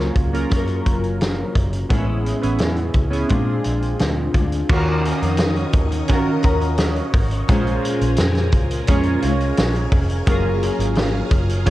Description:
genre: indie pop, bedroom pop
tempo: 86 BPM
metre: 4/4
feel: straight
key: unclear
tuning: A4 = 441 Hz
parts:
  - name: chorused retro synth keys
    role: accompaniment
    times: 0.0-11.7 s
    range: Bb3 to Db5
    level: -25 LUFS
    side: right 4 dB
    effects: plate reverb
  - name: nylon-string guitar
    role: accompaniment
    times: 0.0-11.7 s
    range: A2 to Bb4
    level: -24 LUFS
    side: left 4 dB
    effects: ensemble chorus, vibrato effect, plate reverb
  - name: vintage muted fingered electric bass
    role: bass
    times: 0.0-11.7 s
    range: F1 to Eb3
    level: -22 LUFS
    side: equal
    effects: none
  - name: loose indie drum kit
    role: drums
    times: 0.2-11.7 s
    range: crash cymbal, hi-hat, kick drum, snare drum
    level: -20 LUFS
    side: equal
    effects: none
  - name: phased string machine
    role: sustained chords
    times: 4.7-11.7 s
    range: Ab4 to Eb6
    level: -32 LUFS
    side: left 1 dB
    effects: ensemble chorus, phaser, plate reverb
room: light reverb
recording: cassette tape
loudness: -17 LUFS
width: side -16 dB against mid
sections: 0.0-4.7 A section; 4.7-11.7 B section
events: none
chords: 0.0 Gbmaj7; 1.9 Amaj7; 3.3 Bb7; 4.7 Ebm7; 7.5 Bbm7; 10.3 Gbmaj9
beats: 0.51 1.21 | 1.91 2.60 3.30 4.00 | 4.69 5.39 6.09 6.78 | 7.48 8.18 8.87 9.57 | 10.27 10.96 11.66

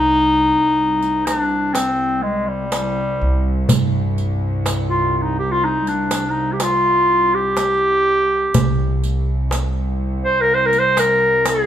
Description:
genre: Turkish makam ensemble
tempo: 124 BPM (eighths)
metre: 10/8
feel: straight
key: C makam nihavent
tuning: A4 = 440 Hz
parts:
  - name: clear clarinet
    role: melody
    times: 0.0-11.7 s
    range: G3 to C5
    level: -16 LUFS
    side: equal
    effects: none
  - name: upright bass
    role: bass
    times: 0.0-10.2 s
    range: C2 to G2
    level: -21 LUFS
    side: equal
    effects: none
  - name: rich studio cello section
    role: drone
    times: 0.0-11.7 s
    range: C2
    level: -25 LUFS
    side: right 1 dB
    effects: none
  - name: riq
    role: percussion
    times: 1.0-11.7 s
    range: none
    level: -25 LUFS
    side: right 4 dB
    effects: none
  - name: darbuka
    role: percussion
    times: 1.3-11.7 s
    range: none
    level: -21 LUFS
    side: right 1 dB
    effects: none
room: moderate large studio reverb, RT60 1.2 s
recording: band playing live in one room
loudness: -15 LUFS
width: side -10 dB against mid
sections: 0.0-11.7 A section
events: none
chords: none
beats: 0.29 0.78 1.26 1.75 2.23 2.72 3.21 | 3.69 4.18 4.66 5.15 5.63 6.12 6.60 7.09 7.58 8.06 | 8.54 9.03 9.52 10.00 10.48 10.97 11.46

